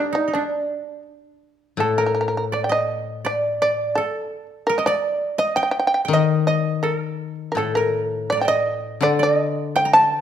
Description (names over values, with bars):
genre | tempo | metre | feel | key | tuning
japanese traditional | 83 BPM | 2/4 | rubato | D miyako bushi | A4 = 440 Hz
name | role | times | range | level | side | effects
shamisen | melody | 0.0-10.2 s | D4 to A5 | -21 LUFS | equal | none
koto | second line | 0.0-10.2 s | D4 to Bb5 | -25 LUFS | right 4 dB | none
koto | accompaniment | 1.8-10.2 s | A2 to Eb3 | -23 LUFS | left 6 dB | none
room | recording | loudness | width
moderate recital hall reverb, RT60 1.3 s | dark, warm production | -19 LUFS | side -9 dB against mid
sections
0.0-1.8 A section; 1.8-10.2 B section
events
none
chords
none